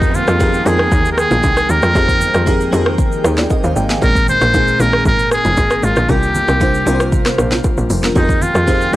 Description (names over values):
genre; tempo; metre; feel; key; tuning
amapiano; 116 BPM; 4/4; straight; F dorian; A4 = 440 Hz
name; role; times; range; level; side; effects
trumpet with metal mute; melody; 0.0-9.0 s; Eb4 to C5; -17 LUFS; equal; analog delay
crystalline FM electric piano; accompaniment; 0.0-9.0 s; Bb2 to Ab5; -19 LUFS; equal; chorus
airy breathy pad; sustained chords; 0.0-9.0 s; C3 to G5; -26 LUFS; left 1 dB; chorus, sidechain pumping
tight log drum bass; bass; 0.0-9.0 s; F1 to F2; -18 LUFS; equal; tube saturation
afro-pop drum kit; drums; 0.0-9.0 s; hi-hat, kick drum, rim click, shaker, snare drum; -17 LUFS; equal; none
downlifter; sound effects; 0.0-4.0 s; none; -30 LUFS; right 3 dB; none
congas and bongos; percussion; 0.1-9.0 s; none; -24 LUFS; right 1 dB; none
room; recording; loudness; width
little or no reverb; dry, gritty hardware recording, cassette tape; -12 LUFS; side -16 dB against mid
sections
0.0-9.0 A section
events
none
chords
0.0 Fm11; 4.0 Bb7sus4; 6.1 C7sus4; 8.2 Fm11